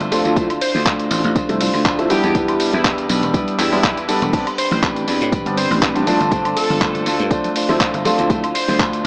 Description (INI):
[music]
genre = filtered disco house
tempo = 121 BPM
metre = 4/4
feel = swing 54% on 16ths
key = A minor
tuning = A4 = 440 Hz
[part]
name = clean electric guitar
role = riff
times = 0.0-9.1 s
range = A3 to C5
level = -25 LUFS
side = equal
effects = sidechain pumping, analog delay
[part]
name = dry thumbed slap bass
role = bass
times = 0.0-9.1 s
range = E1 to A2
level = -25 LUFS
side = equal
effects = sidechain pumping
[part]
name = dusty soul sampler-style drum kit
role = drums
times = 0.0-9.0 s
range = crash cymbal, handclaps, hi-hat, ride cymbal, tambourine, woodblock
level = -24 LUFS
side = equal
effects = sidechain pumping on hats, sidechain pumping on perc, sidechain pumping on cymbals, analog delay
[part]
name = clear grand piano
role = accompaniment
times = 0.1-8.4 s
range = F3 to A4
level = -23 LUFS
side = equal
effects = phaser, sidechain pumping, analog delay
[part]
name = electronic kick drum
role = drums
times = 0.4-8.9 s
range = none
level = -23 LUFS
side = equal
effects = none
[part]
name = analog synth brass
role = melody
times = 0.6-8.8 s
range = E4 to C5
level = -26 LUFS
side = equal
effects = chorus, sidechain pumping
[part]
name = maracas and congas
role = percussion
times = 4.3-9.0 s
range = none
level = -33 LUFS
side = equal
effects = none
[sound]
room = light reverb, digital ambience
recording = echo-heavy mix, small speaker sound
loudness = -18 LUFS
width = mono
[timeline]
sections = 0.0-9.1 A section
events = none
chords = 0.4 Dm7; 2.1 Em7; 4.3 Am11; 6.1 G9sus4; 8.3 Dm7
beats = | 0.37 0.86 1.36 1.85 | 2.35 2.85 3.34 3.84 | 4.33 4.83 5.33 5.82 | 6.32 6.81 7.31 7.80 | 8.30 8.80